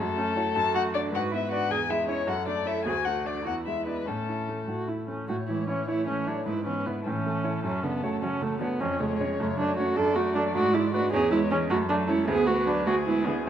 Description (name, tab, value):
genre	quick classical-period movement for piano quartet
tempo	103 BPM (dotted quarters)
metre	6/8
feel	straight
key	A major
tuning	A4 = 440 Hz
part	muted violin	melody	0.0-13.5 s	G#4 to A5	-32 LUFS	left 7 dB	none
part	muted cello	second line	0.0-13.5 s	B2 to A4	-33 LUFS	right 6 dB	none
part	bright baby grand piano	accompaniment	0.0-13.5 s	D2 to D5	-30 LUFS	right 1 dB	none
part	muted viola	accompaniment	0.0-13.5 s	G#3 to B4	-28 LUFS	right 2 dB	none
room	moderate scoring stage reverb, RT60 1.9 s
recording	close, detailed microphones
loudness	-24 LUFS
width	side -10 dB against mid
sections	0.0-5.3 A section; 5.3-13.5 B section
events	none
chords	0.0 F#m; 0.6 D/F#; 1.1 G#dim; 1.7 C#m/E; 2.3 F#m; 2.9 D; 3.5 E7; 4.1 A; 6.5 E/G#; 7.1 A; 7.6 F#m; 8.8 C#/E#; 9.4 F#m; 10.0 D/F#; 10.6 G#dim; 11.1 C#m/E; 11.7 F#m; 12.3 Bm/D; 12.9 E7/D